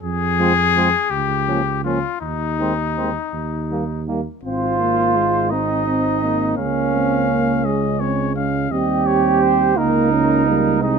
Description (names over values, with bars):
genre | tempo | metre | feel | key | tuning
classical, brass quintet | 56 BPM (dotted quarters) | 6/8 | straight | Ab major | A4 = 440 Hz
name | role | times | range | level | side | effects
bright trumpet | melody | 0.0-11.0 s | Eb4 to F5 | -22 LUFS | left 10 dB | none
dark tuba | bass | 0.0-11.0 s | Ab1 to F2 | -24 LUFS | right 5 dB | none
warm flugelhorn | second line | 0.4-11.0 s | Bb3 to G4 | -20 LUFS | right 6 dB | none
mellow French horn | accompaniment | 0.4-11.0 s | G3 to C4 | -25 LUFS | left 5 dB | none
mellow euphonium | accompaniment | 0.4-11.0 s | Eb3 to Db4 | -23 LUFS | right 4 dB | none
room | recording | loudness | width
light reverb | close, detailed microphones | -16 LUFS | side -6 dB against mid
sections
0.0-4.4 A section; 4.4-11.0 B section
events
none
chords
0.0 Fm; 1.1 Bbm/Db; 2.2 Ab/Eb; 3.3 Eb; 4.4 Ab; 6.6 Dbmaj7; 8.7 Eb; 9.8 Eb7/Db